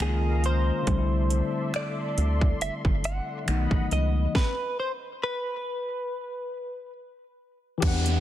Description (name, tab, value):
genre	contemporary R&B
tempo	69 BPM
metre	4/4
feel	swing 54% on 16ths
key	unclear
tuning	A4 = 439 Hz
part	direct-recorded clean electric guitar	melody	0.0-6.9 s	G#4 to F#5	-31 LUFS	equal	analog chorus, tape echo
part	tine electric piano	accompaniment	0.0-8.2 s	D3 to F#5	-30 LUFS	moving between left 8 dB and equal	auto-pan
part	warm analog pad	sustained chords	0.0-8.2 s	G4 to D6	-38 LUFS	left 1 dB	chorus
part	rubbery square bass	bass	0.0-8.2 s	G1 to E2	-25 LUFS	right 1 dB	none
part	trap drum kit	drums	0.0-8.2 s	crash cymbal, finger snaps, hi-hat, kick drum, snare drum	-27 LUFS	equal	overdrive, soft clipping on snare
part	downlifter	sound effects	7.8-8.2 s	none	-32 LUFS	right 5 dB	none
room	little or no reverb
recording	dense, heavily limited modern master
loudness	-24 LUFS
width	side -12 dB against mid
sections	0.0-7.8 A section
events	stop 4.3-7.8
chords	0.0 C#69; 0.9 C69; 3.5 B7; 4.3 N.C.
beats	0.00 | 0.87 1.74 2.61 3.48 | 4.35 5.22 6.09 6.96 | 7.83